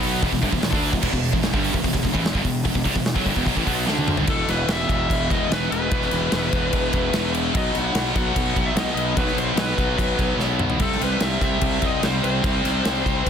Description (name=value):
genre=heavy metal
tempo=147 BPM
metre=4/4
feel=straight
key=E minor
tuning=A4 = 441 Hz
part: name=heavy high-gain guitar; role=riff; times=0.0-13.3 s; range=E2 to D4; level=-27 LUFS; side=left 13 dB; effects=distortion
part: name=scooped high-gain guitar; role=riff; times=0.0-13.3 s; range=E2 to D4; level=-27 LUFS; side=right 12 dB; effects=distortion
part: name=thick fuzz guitar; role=riff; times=0.0-13.3 s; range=E2 to D4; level=-29 LUFS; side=equal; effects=distortion
part: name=fuzz fingered electric bass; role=bass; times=0.0-13.3 s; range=E1 to D2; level=-27 LUFS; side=equal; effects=overdrive
part: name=big rock drum kit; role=drums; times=0.0-13.3 s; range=crash cymbal, hi-hat, kick drum, snare drum, toms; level=-24 LUFS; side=equal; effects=none
part: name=high-gain lead guitar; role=melody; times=4.3-13.3 s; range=A4 to F#5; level=-27 LUFS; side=left 2 dB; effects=distortion, digital delay
room=studio reverb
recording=dense, heavily limited modern master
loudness=-19 LUFS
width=side -8 dB against mid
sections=0.0-4.3 A section; 4.3-13.3 B section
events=drum fill 3.9-4.3, 10.4-10.8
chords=0.0 Em; 4.3 E5; 7.5 B5; 10.8 C